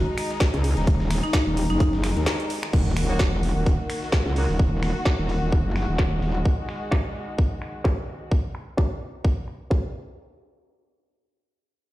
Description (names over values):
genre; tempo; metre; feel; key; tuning
bass house; 129 BPM; 4/4; swing 56% on 16ths; Eb minor; A4 = 438 Hz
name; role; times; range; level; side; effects
warm chamber string section; sustained chords; 0.0-8.3 s; Eb3 to Gb4; -32 LUFS; left 1 dB; sidechain pumping, low-pass filter
metallic wobble bass; bass; 0.0-6.4 s; Eb1 to Eb2; -23 LUFS; equal; distortion, chorus, tube saturation, sidechain pumping
dusty soul sampler-style drum kit; drums; 0.2-4.6 s; hi-hat, snare drum; -42 LUFS; equal; none
garage drum kit; drums; 0.2-10.0 s; crash cymbal, finger snaps, hi-hat, ride cymbal, snare drum; -31 LUFS; equal; overdrive, low-pass filter on hats, low-pass filter on cymbals, low-pass filter on snare
electronic kick drum; drums; 0.4-9.8 s; none; -20 LUFS; equal; none
marimba with hard mallets; melody; 1.2-1.9 s; Eb4; -30 LUFS; left 1 dB; ping-pong delay
impact; sound effects; 2.7-4.6 s; none; -32 LUFS; equal; none
bright horn section; stabs; 3.1-4.5 s; Gb3 to Gb4; -36 LUFS; right 2 dB; none
room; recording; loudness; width
little or no reverb; played on a big sound system in a bare room, stone room reverb; -21 LUFS; side -16 dB against mid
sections
0.0-2.7 A section; 2.7-10.2 B section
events
drop 0.0-2.7; break 2.3-2.7; band accent 2.3; impact 2.7-4.6; filter sweep on drum 2.7-10.2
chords
0.0 Ebm